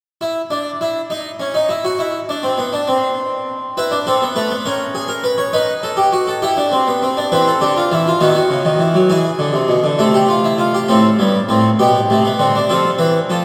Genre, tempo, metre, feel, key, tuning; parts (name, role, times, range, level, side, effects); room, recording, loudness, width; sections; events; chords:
classical, baroque-style 3-part fugue for harpsichord; 67 BPM (dotted quarters); 6/8; straight; A minor; A4 = 439 Hz
harpsichord; solo; 0.2-13.4 s; G2 to Db5; -16 LUFS; equal
wet cathedral reverb, RT60 4.4 s; recorded in a church or concert hall; -16 LUFS; mono
0.2-10.9 A section; 10.9-13.4 B section
0.2 N.C.; 3.8 E5; 4.7 Bbm7/Db; 5.6 B/D#; 6.4 Em; 7.3 Am; 8.2 B; 9.1 E; 10.0 Am/C; 10.9 Am; 11.8 G/B; 12.7 F